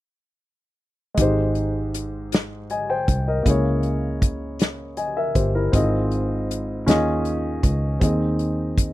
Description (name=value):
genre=slow gospel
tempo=53 BPM (dotted quarters)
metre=6/8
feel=straight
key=Ab major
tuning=A4 = 440 Hz
part: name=warm grand piano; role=accompaniment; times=1.1-8.9 s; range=Ab2 to Ab5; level=-23 LUFS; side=left 1 dB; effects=none
part: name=fingered electric bass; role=bass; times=1.2-8.9 s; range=G1 to Eb2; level=-24 LUFS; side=equal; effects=none
part: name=natural country drum kit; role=drums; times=1.2-8.9 s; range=hi-hat, kick drum, snare drum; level=-21 LUFS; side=equal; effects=none
room=little or no reverb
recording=dry, close 1970s-style studio recording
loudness=-20 LUFS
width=side -16 dB against mid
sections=1.2-8.9 A section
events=none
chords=1.2 Abmaj7; 3.5 Dbm6; 5.7 Ab6; 6.9 Eb9sus4; 8.0 Ab/Eb